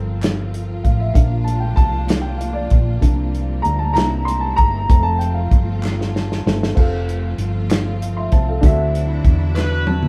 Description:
slow gospel; 64 BPM (dotted quarters); 6/8; straight; F major; A4 = 438 Hz
dark upright piano; accompaniment; 0.0-10.1 s; D3 to C6; -25 LUFS; equal
clear studio string section; sustained chords; 0.0-10.1 s; F3 to F4; -32 LUFS; equal
hollow-body short-scale fingered electric bass; bass; 0.0-10.1 s; F1 to E2; -23 LUFS; equal
warm soul drum kit; drums; 0.2-10.1 s; crash cymbal, hi-hat, kick drum, snare drum, toms; -18 LUFS; equal
group handclap; percussion; 0.2-9.9 s; -39 LUFS; equal
warm horn section; melody; 9.6-10.1 s; E4 to B4; -26 LUFS; equal
moderate studio reverb, RT60 0.5 s; band playing live in one room; -18 LUFS; mono
0.0-6.8 A section; 6.8-10.1 B section
upright piano solo 0.0-6.8; drum fill 5.8-6.8, 9.6-10.1; upright piano fill 9.6-10.1
0.0 F; 1.2 Bb; 3.0 C7sus4; 4.0 C7; 4.9 F; 8.6 D9

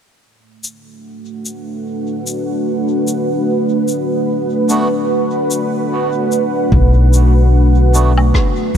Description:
ambient dub; 74 BPM; 4/4; swing 58% on 16ths; B minor; A4 = 442 Hz
deep dark ambient pad; sustained chords; 1.2-8.8 s; A3 to F#5; -16 LUFS; right 1 dB; chorus, built-in reverb
shaker, woodblock and rim click; drums; 0.6-8.8 s; -23 LUFS; left 2 dB
melodica; stabs; 4.7-8.1 s; A3 to F#4; -24 LUFS; right 3 dB; low-pass filter, dub echo
upright bass; bass; 6.7-8.8 s; B1; -10 LUFS; equal
electronic kick drum; drums; 6.7-8.5 s; -15 LUFS; equal; overdrive
moderate huge ambient reverb, RT60 3.7 s; dreamy mix soaked in reverb; -12 LUFS; side -8 dB against mid
0.2-6.7 A section; 6.7-8.8 B section
filter sweep on melodica 6.7-8.8
0.2 Bm7

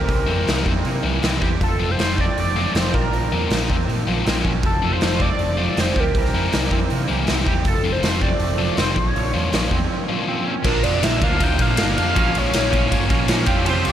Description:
indie rock; 159 BPM; 4/4; straight; A4 = 441 Hz
overdriven synth lead; melody; 0.0-13.9 s; A4 to G5; -25 LUFS; equal; phaser, tape echo
twangy electric guitar; riff; 0.0-13.9 s; E3 to G4; -27 LUFS; right 7 dB; analog chorus
overdriven picked electric bass; bass; 0.0-13.9 s; F1 to C3; -24 LUFS; equal
raw garage drum kit; drums; 0.1-13.9 s; crash cymbal, hi-hat, kick drum, ride cymbal, snare drum; -21 LUFS; equal
sludgy distorted guitar; riff; 0.3-13.9 s; Bb2 to F4; -25 LUFS; left 6 dB; overdrive
moderate huge ambient reverb, RT60 6.9 s; dreamy mix soaked in reverb; -17 LUFS; side -10 dB against mid
0.0-10.7 A section; 10.7-13.9 B section
break 9.9-10.7
0.1 C7; 1.6 F; 2.9 Bbmadd9; 4.6 F; 6.1 C7; 7.7 F; 9.0 Bbmadd9; 10.7 Bb; 12.2 Bbm

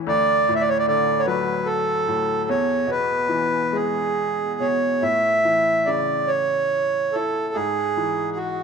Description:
celtic folk, Celtic slow air; 46-51 BPM (dotted quarters); 6/8; rubato; A major; A4 = 440 Hz
bright upright piano; accompaniment; 0.0-8.6 s; D2 to E4; -26 LUFS; left 6 dB
accordion; melody; 0.1-8.6 s; F#4 to E5; -20 LUFS; right 3 dB
moderate concert hall reverb, RT60 1.7 s; minimal, uncompressed stereo recording; -19 LUFS; side -5 dB against mid
0.0-5.0 A section; 5.0-8.6 B section
0.1 D; 2.5 E; 5.0 A; 7.6 E/G#

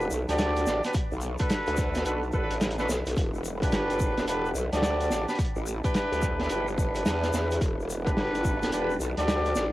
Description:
glitch hop; 108 BPM; 4/4; swing 64% on 16ths; E minor; A4 = 441 Hz
warm horn section; stabs; 0.0-9.7 s; D4 to D5; -29 LUFS; equal; sidechain pumping, cassette tape, analog delay
growl bass; bass; 0.0-9.7 s; E1 to E2; -29 LUFS; equal; chorus, tube saturation
egg shaker; percussion; 0.0-9.7 s; -43 LUFS; left 4 dB
vintage drum kit; drums; 0.3-9.7 s; hi-hat, snare drum; -31 LUFS; equal; cassette tape
electronic kick drum; drums; 0.9-8.6 s; -29 LUFS; equal; cassette tape
light reverb, small room ambience; home recording on cassette; -25 LUFS; side -16 dB against mid
0.0-9.7 A section
0.0 Em7 (rootless); 0.9 Bm7; 3.2 Em7; 5.4 A7sus4 (rootless); 7.6 Em7

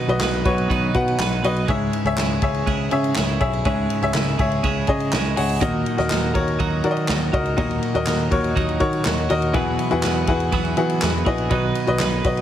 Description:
piano-driven pop; 122 BPM; 4/4; straight; A4 = 440 Hz
clear concert grand piano; accompaniment; 0.0-12.4 s; G#2 to F#5; -22 LUFS; left 3 dB
twelve-string electric guitar; riff; 0.0-12.4 s; B2 to B4; -26 LUFS; right 7 dB
overdriven picked electric bass; bass; 0.1-12.4 s; A#1 to E3; -24 LUFS; equal
unplugged drum kit; drums; 0.1-12.4 s; handclaps, hi-hat, kick drum, ride cymbal, snare drum; -25 LUFS; right 1 dB
light reverb, small room ambience; heavily compressed radio sound; -18 LUFS; side -10 dB against mid
0.0-12.4 A section
0.0 B; 1.7 C#m; 5.6 D#m; 9.5 Eadd9; 11.5 B

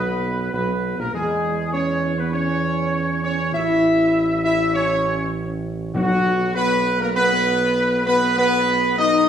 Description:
classical; 100 BPM; 4/4; straight; B major; A4 = 440 Hz
dark trumpet section; melody; 0.0-9.3 s; F#4 to E5; -20 LUFS; right 1 dB
mellow French horn section; sustained chords; 0.0-9.3 s; F#3 to E4; -24 LUFS; left 5 dB
warm trombone section; sustained chords; 0.0-9.3 s; F#3 to E4; -26 LUFS; right 2 dB
mellow tuba; bass; 0.0-9.3 s; A1 to E2; -26 LUFS; right 3 dB
timpani; percussion; 5.9-6.8 s; B2; -25 LUFS; left 2 dB
wet recital hall reverb, RT60 1.5 s; recorded in a church or concert hall; -18 LUFS; side -8 dB against mid
0.0-9.3 A section
0.0 N.C.; 1.1 E6; 3.5 A; 5.9 B

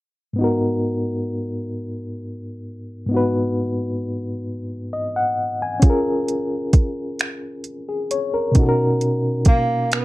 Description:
slow six-eight R&B; 44 BPM (dotted quarters); 6/8; straight; G# dorian; A4 = 440 Hz
reed electric piano; accompaniment; 0.3-10.0 s; G#2 to G#5; -21 LUFS; left 1 dB; fast tremolo
smooth R&B drum kit; drums; 5.8-10.0 s; finger snaps, hi-hat, kick drum; -15 LUFS; right 1 dB; overdrive
breathy tenor saxophone; melody; 9.5-10.0 s; A#3 to B3; -20 LUFS; right 2 dB
moderate studio reverb, RT60 0.5 s; dark, warm production; -19 LUFS; side -18 dB against mid
0.4-10.0 A section
0.4 G#m9; 5.8 A#m7; 8.6 Bmaj9

